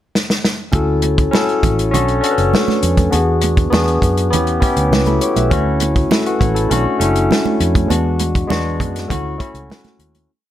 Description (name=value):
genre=lush 1970s-style soul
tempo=100 BPM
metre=4/4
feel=straight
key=D major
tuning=A4 = 435 Hz
part: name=warm soul drum kit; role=drums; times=0.2-10.3 s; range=hi-hat, kick drum, snare drum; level=-18 LUFS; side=equal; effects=none
part: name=barky tine electric piano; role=accompaniment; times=0.7-10.3 s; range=G#3 to E5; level=-17 LUFS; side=left 2 dB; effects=phaser
part: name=vintage muted fingered electric bass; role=bass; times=0.7-10.3 s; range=F#1 to F#2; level=-18 LUFS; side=equal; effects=none
part: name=congas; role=percussion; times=0.7-10.3 s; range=none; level=-23 LUFS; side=right 8 dB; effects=none
room=studio reverb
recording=none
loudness=-13 LUFS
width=side -12 dB against mid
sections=0.0-0.7 pickup bar; 0.7-10.3 A section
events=drum fill 0.1-0.7; fade-out 7.9-10.3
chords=0.0 N.C.; 0.7 Dmaj7; 1.9 Bm7; 3.1 E7; 4.3 B9sus4; 5.5 Dmaj7; 6.7 Bm7 (rootless); 7.9 E7; 9.1 Dmaj7